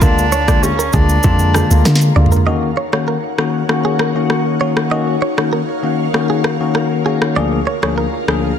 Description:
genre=afrobeats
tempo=98 BPM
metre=4/4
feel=straight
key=Eb minor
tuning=A4 = 440 Hz
part: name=warm tenor saxophone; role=melody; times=0.0-1.9 s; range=Db4 to D4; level=-19 LUFS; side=right 1 dB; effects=tape echo
part: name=bell-like tine electric piano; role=accompaniment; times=0.0-8.5 s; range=D2 to Ab4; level=-17 LUFS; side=left 5 dB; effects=none
part: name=ethereal airy pad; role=sustained chords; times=0.0-8.6 s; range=D4 to Bb5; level=-22 LUFS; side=left 1 dB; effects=ensemble chorus, built-in reverb, phaser, sidechain pumping
part: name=direct-recorded clean electric guitar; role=riff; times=0.0-8.2 s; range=Ab4 to Eb5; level=-22 LUFS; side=right 6 dB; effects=tape echo
part: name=deep log drum bass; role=bass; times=0.0-2.3 s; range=D2 to D3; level=-14 LUFS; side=equal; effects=none
part: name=afro-pop drum kit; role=drums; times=0.0-8.4 s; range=kick drum, rim click, shaker, snare drum, toms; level=-18 LUFS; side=right 1 dB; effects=none
part: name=congas and bongos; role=percussion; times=0.0-2.3 s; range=none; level=-26 LUFS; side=right 4 dB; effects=none
room=light reverb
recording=dense, heavily limited modern master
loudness=-13 LUFS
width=side -8 dB against mid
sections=0.0-2.5 A section; 2.5-8.6 B section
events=drum fill 1.9-2.5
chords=0.0 Bb7; 2.5 Ebm7; 7.4 Bb7/D

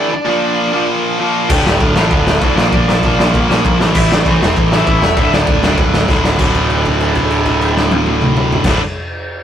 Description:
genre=punk rock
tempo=196 BPM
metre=4/4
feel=straight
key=D minor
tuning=A4 = 440 Hz
part: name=raw garage guitar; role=melody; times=0.0-5.8 s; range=C4 to G5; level=-19 LUFS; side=right 1 dB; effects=overdrive
part: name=tight distorted guitar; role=riff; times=0.0-8.8 s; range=D2 to Bb3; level=-15 LUFS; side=equal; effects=distortion
part: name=growling picked electric bass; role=bass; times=1.5-8.8 s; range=D1 to C2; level=-17 LUFS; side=equal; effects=overdrive
part: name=raw garage drum kit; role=drums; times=1.5-8.7 s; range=crash cymbal, kick drum, ride cymbal, snare drum, toms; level=-15 LUFS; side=equal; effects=none
room=light reverb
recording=rough rehearsal-room recording, tube saturation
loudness=-11 LUFS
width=side -9 dB against mid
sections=0.0-6.4 A section; 6.4-8.8 B section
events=drum fill 6.1-6.4; held note 6.4-8.6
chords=0.3 Bb; 1.5 Dm; 2.6 Bb; 3.8 Am; 5.2 D5

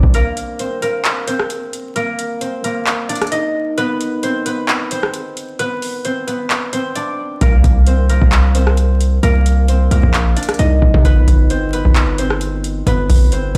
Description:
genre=hip hop, trap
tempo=132 BPM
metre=4/4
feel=half-time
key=C minor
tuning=A4 = 441 Hz
part: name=concert harp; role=melody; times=0.0-13.6 s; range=Bb3 to Eb5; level=-22 LUFS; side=equal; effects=none
part: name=distorted 808-style bass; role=bass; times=0.0-0.1, 7.4-13.6 s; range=G1 to C3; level=-16 LUFS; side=equal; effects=distortion
part: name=booming analog drum machine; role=drums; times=0.0-13.6 s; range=handclaps, hi-hat, kick drum, rim click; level=-18 LUFS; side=equal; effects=none
room=little or no reverb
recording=played on a big sound system in a bare room, large studio reverb, vinyl crackle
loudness=-16 LUFS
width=mono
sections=0.0-13.6 A section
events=break 0.1-7.4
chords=0.1 Cm7; 3.8 Bm; 7.4 Cm7; 11.0 G

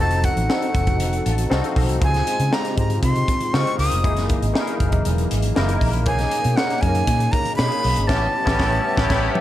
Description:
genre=polished 1980s jazz-funk pop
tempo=118 BPM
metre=4/4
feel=straight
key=unclear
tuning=A4 = 440 Hz
part: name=breathy bright jazz flute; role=melody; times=0.0-9.4 s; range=F#5 to Eb6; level=-24 LUFS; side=equal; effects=none
part: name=barky tine electric piano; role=accompaniment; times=0.0-9.4 s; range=Bb3 to A5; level=-25 LUFS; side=left 2 dB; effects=ensemble chorus
part: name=hollow soft pad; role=sustained chords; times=0.0-9.4 s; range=B2 to A4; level=-32 LUFS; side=right 2 dB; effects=chorus
part: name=vintage muted fingered electric bass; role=bass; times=0.0-9.3 s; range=Fb1 to Db3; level=-22 LUFS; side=equal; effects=none
part: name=crisp fusion drum kit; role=drums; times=0.1-9.4 s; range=crash cymbal, hi-hat, kick drum, snare drum, toms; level=-23 LUFS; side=equal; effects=none
part: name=warm horn section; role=second line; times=8.1-9.2 s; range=E3 to G4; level=-31 LUFS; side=right 2 dB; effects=none
room=small room reverb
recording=dark, warm production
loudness=-17 LUFS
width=side -13 dB against mid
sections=0.0-9.4 A section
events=tine electric piano fill 1.0-2.0; band accent 8.1-9.4; drum fill 9.1-9.4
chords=0.0 F7b9; 2.0 Dbmaj7; 4.0 Gb13; 6.1 Bmaj13; 8.1 A9

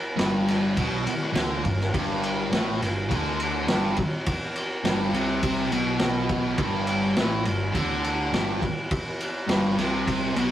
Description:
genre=garage rock duo or trio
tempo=103 BPM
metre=4/4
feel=straight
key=G major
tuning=A4 = 440 Hz
part: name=thick fuzz guitar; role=riff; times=0.2-10.5 s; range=G2 to D3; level=-25 LUFS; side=equal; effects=distortion
part: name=fingered electric bass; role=bass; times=0.2-10.5 s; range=G1 to D2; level=-34 LUFS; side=equal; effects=overdrive
part: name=vintage drum kit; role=drums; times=0.2-10.5 s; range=kick drum, ride cymbal, snare drum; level=-26 LUFS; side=equal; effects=none
room=wet small room reverb, RT60 0.6 s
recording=rough rehearsal-room recording, tube saturation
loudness=-22 LUFS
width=side -12 dB against mid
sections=0.0-10.5 A section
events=none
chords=0.0 G

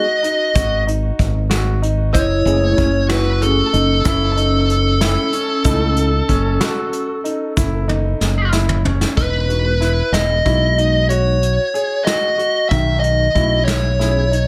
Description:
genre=progressive instrumental, band music in an uneven meter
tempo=187 BPM (eighths)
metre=11/8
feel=straight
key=unclear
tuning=A4 = 440 Hz
part: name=smooth overdriven lead guitar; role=melody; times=0.0-14.5 s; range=A4 to E5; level=-21 LUFS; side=equal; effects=plate reverb
part: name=vibraphone with soft mallets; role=second line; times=0.0-8.5 s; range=C#4 to F#4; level=-26 LUFS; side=equal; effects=none
part: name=overdriven tine electric piano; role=accompaniment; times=0.0-14.2 s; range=G#3 to A4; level=-26 LUFS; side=equal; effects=ensemble chorus, plate reverb
part: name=warm concert grand piano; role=arpeggios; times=0.0-14.5 s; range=D#3 to D#5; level=-27 LUFS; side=equal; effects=plate reverb, tape echo
part: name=soft brush drum kit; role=drums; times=0.2-14.5 s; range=hi-hat, kick drum, snare drum, toms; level=-24 LUFS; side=equal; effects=none
part: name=modern bright fingered electric bass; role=bass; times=0.6-14.5 s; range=E1 to C#2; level=-20 LUFS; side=equal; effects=none
part: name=egg shaker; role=percussion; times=0.6-8.7 s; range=none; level=-37 LUFS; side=equal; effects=none
room=moderate small room reverb, RT60 0.5 s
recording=none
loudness=-17 LUFS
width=mono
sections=0.0-9.2 A section; 9.2-14.5 B section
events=drum fill 7.9-9.2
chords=0.0 G#7(no3); 2.1 F#m7; 9.2 Emaj9; 12.7 B9sus4

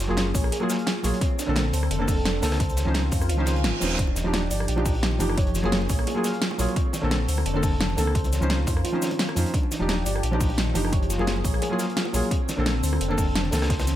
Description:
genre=liquid drum and bass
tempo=173 BPM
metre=4/4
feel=swing 54% on 16ths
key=unclear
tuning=A4 = 440 Hz
part: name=warm analog pad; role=sustained chords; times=0.0-14.0 s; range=D3 to A4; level=-33 LUFS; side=left 2 dB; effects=chorus
part: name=harp-like synth pluck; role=arpeggios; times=0.0-14.0 s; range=C4 to F5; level=-33 LUFS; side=right 3 dB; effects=chorus, digital delay
part: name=sub bass with octave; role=bass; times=0.0-14.0 s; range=Eb1 to F2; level=-26 LUFS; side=equal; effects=none
part: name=crunchy breakbeat drum kit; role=drums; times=0.0-14.0 s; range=hi-hat, snare drum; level=-35 LUFS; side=equal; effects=high-pass filter on hats, high-pass filter on snare, high-pass filter on room
part: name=pop drum kit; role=drums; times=0.0-13.9 s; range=hi-hat, rim click, shaker, snare drum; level=-29 LUFS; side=equal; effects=overdrive
part: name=felt-muted upright piano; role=accompaniment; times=0.1-13.7 s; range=D3 to C5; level=-28 LUFS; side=equal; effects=digital delay
part: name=electronic kick drum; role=drums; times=0.3-13.8 s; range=none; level=-25 LUFS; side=equal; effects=overdrive
part: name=reverse cymbal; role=sound effects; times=3.4-4.0 s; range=none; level=-34 LUFS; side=right 7 dB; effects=none
part: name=bongos and congas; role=percussion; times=4.1-13.9 s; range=none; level=-37 LUFS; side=equal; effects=none
room=light reverb, small room ambience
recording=none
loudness=-21 LUFS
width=side -12 dB against mid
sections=0.0-14.0 A section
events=reverse cymbal 3.4-4.0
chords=0.0 Gbmaj9; 1.2 Bbmaj9; 2.6 Dbmaj9; 4.0 Ebmaj9; 5.4 Gbmaj9; 6.8 Bbmaj9; 8.2 Dbmaj9; 9.5 Ebmaj9; 10.9 Gbmaj9; 12.3 Bbmaj9

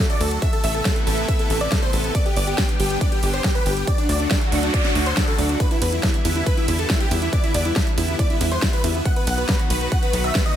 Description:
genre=uplifting trance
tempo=139 BPM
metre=4/4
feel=straight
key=E minor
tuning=A4 = 440 Hz
part: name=big supersaw lead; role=melody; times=0.0-10.5 s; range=D4 to F#5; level=-25 LUFS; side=equal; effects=sidechain pumping, ping-pong delay
part: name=dark baby grand piano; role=second line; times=0.0-10.5 s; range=D4 to F#5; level=-32 LUFS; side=equal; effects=sidechain pumping, ping-pong delay
part: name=lush unison pad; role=sustained chords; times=0.0-10.6 s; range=C3 to G4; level=-28 LUFS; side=left 1 dB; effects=chorus, sidechain pumping
part: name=big-room dance drum kit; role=drums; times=0.1-10.5 s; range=hi-hat, ride cymbal, snare drum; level=-26 LUFS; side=equal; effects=sidechain pumping on hats, sidechain pumping on cymbals
part: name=tight sequencer bass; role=bass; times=0.2-10.3 s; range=G1 to E2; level=-24 LUFS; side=equal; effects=sidechain pumping
part: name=electronic kick drum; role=drums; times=0.4-10.4 s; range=none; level=-21 LUFS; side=equal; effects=none
part: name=noise sweep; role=sound effects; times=4.2-5.6 s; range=none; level=-29 LUFS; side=left 1 dB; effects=none
room=little or no reverb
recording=none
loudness=-18 LUFS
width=side -10 dB against mid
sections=0.0-10.6 A section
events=noise sweep 4.2-5.6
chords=0.4 Amadd9; 2.1 G; 3.9 D; 5.6 Em7; 9.1 B

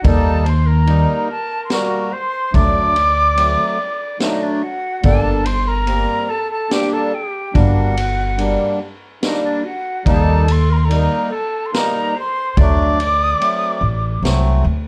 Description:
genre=klezmer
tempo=72 BPM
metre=3/4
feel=straight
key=unclear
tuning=A4 = 440 Hz
part: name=concert flute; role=melody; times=0.0-14.2 s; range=D5 to D6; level=-23 LUFS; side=equal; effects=plate reverb
part: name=clear clarinet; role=second line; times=0.0-14.2 s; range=D4 to D5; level=-28 LUFS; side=equal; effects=none
part: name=accordion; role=accompaniment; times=0.0-14.7 s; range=F#3 to F#4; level=-23 LUFS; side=equal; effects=light tremolo tuning
part: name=upright bass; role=bass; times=0.0-14.9 s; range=G1 to Eb2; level=-18 LUFS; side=equal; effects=none
part: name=street-band drum kit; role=drums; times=0.0-14.4 s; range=kick drum, ride cymbal, snare drum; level=-24 LUFS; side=equal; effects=none
room=moderate studio reverb, RT60 0.6 s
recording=dark, warm production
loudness=-17 LUFS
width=mono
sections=0.0-5.0 A section; 5.0-14.9 A section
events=none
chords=0.0 Eb; 2.5 D; 5.0 Gm; 10.0 Eb; 12.6 D

